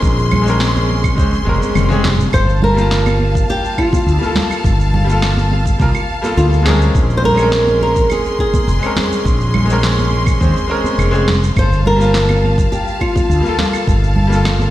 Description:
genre	sunset chillout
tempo	104 BPM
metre	4/4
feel	straight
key	unclear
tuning	A4 = 440 Hz
part	bright grand piano	accompaniment	0.0-14.7 s	G3 to A5	-21 LUFS	moving between left 4 dB and right 2 dB	auto-pan, tape echo
part	clear symphonic string section	sustained chords	0.0-14.7 s	Ab4 to C6	-23 LUFS	left 1 dB	none
part	mellow fretless electric bass	bass	0.0-14.7 s	F1 to Eb2	-15 LUFS	equal	none
part	deep house drum kit	drums	0.0-14.7 s	claves, shaker, snare drum, toms	-22 LUFS	equal	none
part	electronic kick drum	drums	0.0-14.0 s	none	-17 LUFS	equal	none
part	congas	percussion	0.3-14.7 s	none	-22 LUFS	right 2 dB	none
part	swell	sound effects	1.4-2.3 s	none	-25 LUFS	left 3 dB	none
part	flamenco guitar	melody	2.3-13.5 s	F4 to C5	-18 LUFS	equal	tape echo
room	light reverb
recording	played on a big sound system in a bare room, stone room reverb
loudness	-12 LUFS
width	side -14 dB against mid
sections	0.0-14.7 A section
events	swell 1.4-2.3; kick drops out 1.8-2.3; drum fill 1.8-2.3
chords	0.0 Bbm9; 2.3 Gm9; 7.0 Bbm9; 11.6 Gm9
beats	| 0.03 0.61 1.18 1.76 | 2.34 2.92 3.49 4.07 | 4.65 5.22 5.80 6.38 | 6.95 7.53 8.11 8.68 | 9.26 9.84 10.41 10.99 | 11.57 12.15 12.72 13.30 | 13.88 14.45

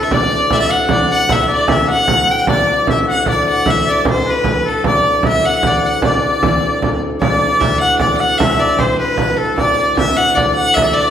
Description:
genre	medieval dance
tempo	101 BPM (dotted quarters)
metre	6/8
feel	straight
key	D major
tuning	A4 = 436 Hz
part	clear fiddle	melody	0.0-11.1 s	A4 to G5	-16 LUFS	equal	none
part	bright shawm	second line	0.0-11.1 s	A4 to F#5	-18 LUFS	left 2 dB	none
part	pedal harmonium	drone	0.0-11.1 s	D2 to A2	-23 LUFS	equal	none
part	frame drum	percussion	0.1-11.0 s	none	-18 LUFS	right 2 dB	none
room	wet large studio reverb, RT60 1.3 s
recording	band playing live in one room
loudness	-12 LUFS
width	side -9 dB against mid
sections	0.0-7.2 A section; 7.2-11.1 A section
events	none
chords	none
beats	| 0.11 0.70 | 1.29 1.88 | 2.48 3.07 | 3.66 4.25 | 4.85 5.44 | 6.03 6.63 | 7.22 7.81 | 8.40 8.99 | 9.59 10.18 | 10.77

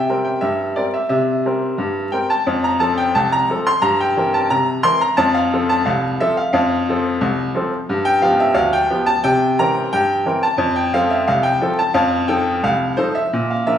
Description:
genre	ragtime piano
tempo	88 BPM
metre	2/4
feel	straight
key	F major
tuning	A4 = 440 Hz
part	bright upright piano	solo	0.0-13.8 s	C2 to C6	-15 LUFS	equal	none
room	wet large studio reverb, RT60 1.3 s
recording	band playing live in one room, vinyl crackle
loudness	-15 LUFS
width	side -9 dB against mid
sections	0.0-13.8 A section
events	none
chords	0.0 C7; 2.5 F; 3.8 C7/G; 5.2 F; 7.9 G7; 9.2 C7; 10.6 F; 12.0 F7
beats	0.42 | 1.10 1.78 | 2.46 3.14 | 3.82 4.50 | 5.18 5.85 | 6.53 7.21 | 7.88 8.56 | 9.24 9.92 | 10.59 11.27 | 11.95 12.63 | 13.31

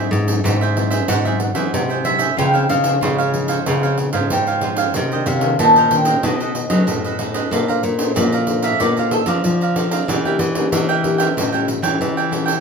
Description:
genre	samba and choro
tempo	93 BPM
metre	4/4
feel	straight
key	unclear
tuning	A4 = 440 Hz
part	mandolin	melody	0.0-10.8 s	F4 to A5	-19 LUFS	equal	none
part	cavaquinho	accompaniment	0.0-12.6 s	D4 to Bb5	-23 LUFS	right 7 dB	none
part	nylon-string guitar	accompaniment	0.0-12.6 s	F#2 to C5	-24 LUFS	left 4 dB	none
part	nylon-string guitar	bass	0.0-12.6 s	Ab2 to F#3	-20 LUFS	left 1 dB	none
part	pandeiro	percussion	0.1-12.6 s	none	-22 LUFS	right 2 dB	none
room	moderate studio reverb, RT60 0.6 s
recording	minimal, uncompressed stereo recording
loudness	-15 LUFS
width	side -5 dB against mid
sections	0.0-12.6 A section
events	mandolin solo 0.0-12.6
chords	0.0 Abaug7; 2.4 Dbmaj9; 5.0 Cm9; 6.2 B6; 7.5 Bbmaj9; 10.1 Em7b5; 11.4 A7b13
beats	0.45 1.09 1.74 | 2.38 3.02 3.67 4.31 | 4.95 5.59 6.24 6.88 | 7.52 8.16 8.81 9.45 | 10.09 10.73 11.37 12.02

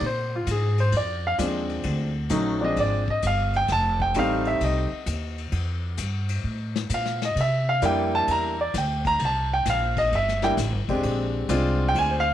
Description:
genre	jazz piano trio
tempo	131 BPM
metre	4/4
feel	swing 68% on 8ths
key	unclear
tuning	A4 = 440 Hz
part	warm baby grand piano	melody	0.0-12.3 s	F3 to Bb5	-24 LUFS	equal	none
part	upright bass	bass	0.0-12.3 s	E1 to C3	-26 LUFS	equal	none
part	vintage brush drum kit	drums	0.0-12.1 s	hi-hat, kick drum, ride cymbal, snare drum	-34 LUFS	left 6 dB	none
room	light reverb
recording	1960s-style stereo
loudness	-22 LUFS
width	side -11 dB against mid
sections	0.0-12.3 A section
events	grand piano solo 0.0-12.3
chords	0.0 Bb7; 3.7 F7; 7.4 C7; 11.0 Bb7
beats	| 0.02 0.47 0.93 1.39 | 1.85 2.31 2.77 3.23 | 3.69 4.15 4.61 5.07 | 5.53 5.98 6.44 6.90 | 7.36 7.82 8.28 8.74 | 9.20 9.66 10.12 10.57 | 11.04 11.49 11.95

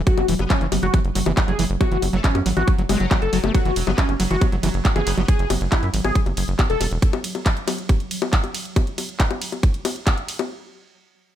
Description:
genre	psychedelic trance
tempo	138 BPM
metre	4/4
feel	straight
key	F# minor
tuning	A4 = 440 Hz
part	pulsing gated texture	sustained chords	0.0-8.8 s	F#3	-30 LUFS	right 2 dB	chorus, built-in reverb, sidechain pumping
part	tight sequencer bass	bass	0.0-7.0 s	E1 to F#2	-23 LUFS	equal	none
part	wide unison lead	melody	0.1-6.8 s	C#4 to A4	-26 LUFS	left 1 dB	phaser, sidechain pumping, ping-pong delay
part	electronic kick drum	drums	0.1-10.2 s	none	-18 LUFS	equal	studio reverb
part	garage drum kit	drums	0.1-10.5 s	bongos, handclaps, hi-hat, ride cymbal	-25 LUFS	left 3 dB	studio reverb
part	overdriven acid bass	riff	0.2-5.2 s	E3 to A3	-26 LUFS	moving between left 7 dB and right 7 dB	distortion, auto-pan, sidechain pumping, tape echo
part	metallic wobble bass	second line	0.4-5.2 s	F#3 to B3	-37 LUFS	left 3 dB	none
room	digital ambience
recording	none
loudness	-18 LUFS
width	side -11 dB against mid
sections	0.0-10.5 A section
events	drop 0.0-10.5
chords	0.0 F#5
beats	| 0.07 0.50 0.94 1.37 | 1.81 2.24 2.68 3.11 | 3.54 3.98 4.42 4.85 | 5.28 5.72 6.15 6.59 | 7.02 7.46 7.89 8.33 | 8.76 9.20 9.63 10.07

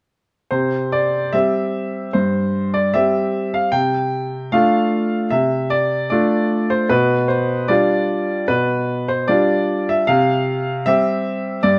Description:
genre	classical-period piano sonatina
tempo	76 BPM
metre	4/4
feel	rubato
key	C major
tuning	A4 = 440 Hz
part	clear grand piano	solo	0.5-11.8 s	G2 to G5	-18 LUFS	equal	none
room	light reverb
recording	close, detailed microphones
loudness	-19 LUFS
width	mono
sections	0.5-11.8 A section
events	none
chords	0.5 C; 3.7 Dm7/C; 6.9 G7/B; 10.1 C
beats	| 0.51 1.33 2.14 2.94 | 3.73 4.53 5.32 6.11 | 6.91 7.70 8.50 9.29 | 10.08 10.86 11.63

